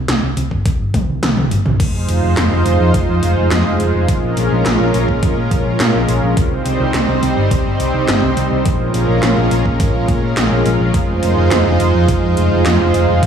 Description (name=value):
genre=synthwave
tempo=105 BPM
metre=4/4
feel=straight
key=F minor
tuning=A4 = 440 Hz
part: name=picked electric bass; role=bass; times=0.0-13.3 s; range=F1 to Bb2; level=-17 LUFS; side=equal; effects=tube saturation, sidechain pumping
part: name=80s electronic pad drums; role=drums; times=0.1-13.3 s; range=crash cymbal, handclaps, hi-hat, snare drum, toms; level=-20 LUFS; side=equal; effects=gated reverb on snare and toms
part: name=electronic kick drum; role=drums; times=0.5-13.3 s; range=none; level=-18 LUFS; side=equal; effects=none
part: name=lush unison pad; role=sustained chords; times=1.8-13.3 s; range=G3 to C5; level=-16 LUFS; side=right 1 dB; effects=chorus, sidechain pumping
room=light reverb, digital ambience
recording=studio ambience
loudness=-13 LUFS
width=side -8 dB against mid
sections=0.0-1.8 A section; 1.8-13.3 B section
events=drum fill 0.9-1.8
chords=0.0 C5; 1.8 Fm7; 4.1 Bbm7; 6.4 Cm; 8.7 Bbm7; 10.9 Fm7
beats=0.09 0.66 1.23 | 1.80 2.37 2.94 3.51 | 4.08 4.66 5.23 5.80 | 6.37 6.94 7.51 8.09 | 8.66 9.23 9.80 10.37 | 10.94 11.51 12.09 12.66 | 13.23